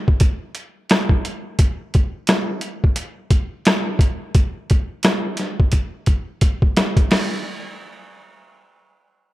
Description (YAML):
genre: hip hop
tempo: 87 BPM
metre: 4/4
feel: swing 59% on 16ths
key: none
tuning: none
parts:
  - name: boom bap sampler-style drum kit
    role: drums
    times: 0.1-7.3 s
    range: crash cymbal, hi-hat, kick drum, rim click, snare drum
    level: -16 LUFS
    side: equal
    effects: none
room: light reverb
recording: rough home demo mix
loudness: -17 LUFS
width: side -16 dB against mid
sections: 0.0-7.1 A section; 7.1-9.3 B section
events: drum fill 5.7-7.1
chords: none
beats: 0.21 0.90 | 1.59 2.28 2.97 3.66 | 4.35 5.04 5.73 6.42 | 7.11